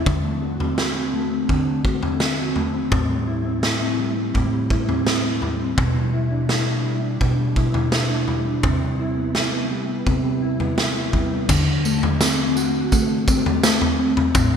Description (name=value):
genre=dream pop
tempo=84 BPM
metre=4/4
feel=straight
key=unclear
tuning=A4 = 440 Hz
part: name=mellow electric guitar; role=arpeggios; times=0.0-14.6 s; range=A2 to B4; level=-21 LUFS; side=equal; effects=ensemble chorus, digital delay
part: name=raw garage drum kit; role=drums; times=0.1-14.5 s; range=crash cymbal, kick drum, snare drum, tambourine, toms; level=-22 LUFS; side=equal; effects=gated reverb
room=moderate lush hall reverb, RT60 2.0 s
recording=bright 1980s-style digital production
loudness=-18 LUFS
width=side -7 dB against mid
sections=0.1-11.5 A section; 11.5-14.6 B section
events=none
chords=0.1 D7; 2.9 Am7; 5.8 G6/B; 8.6 Cmaj7; 11.5 D7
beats=| 0.07 0.78 1.50 2.21 | 2.92 3.64 4.35 5.07 | 5.78 6.50 7.21 7.92 | 8.64 9.35 10.07 10.78 | 11.49 12.21 12.92 13.64 | 14.35